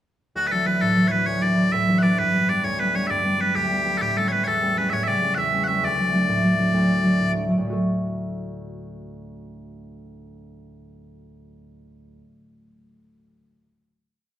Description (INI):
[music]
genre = celtic folk, Celtic slide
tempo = 132 BPM (dotted quarters)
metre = 12/8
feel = straight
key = D major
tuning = A4 = 440 Hz
[part]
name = loud bright bagpipes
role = melody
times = 0.4-7.3 s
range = F#4 to F#5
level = -22 LUFS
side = equal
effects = slapback echo
[part]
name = concert harp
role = accompaniment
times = 0.4-12.3 s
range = D2 to A4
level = -23 LUFS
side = equal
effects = none
[sound]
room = wet stone room reverb, RT60 1.0 s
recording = band playing live in one room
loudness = -19 LUFS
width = side -11 dB against mid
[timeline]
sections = 0.4-7.6 A section; 7.6-11.3 final chord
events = none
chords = 0.4 Dadd9; 2.2 G; 4.0 A7; 5.8 D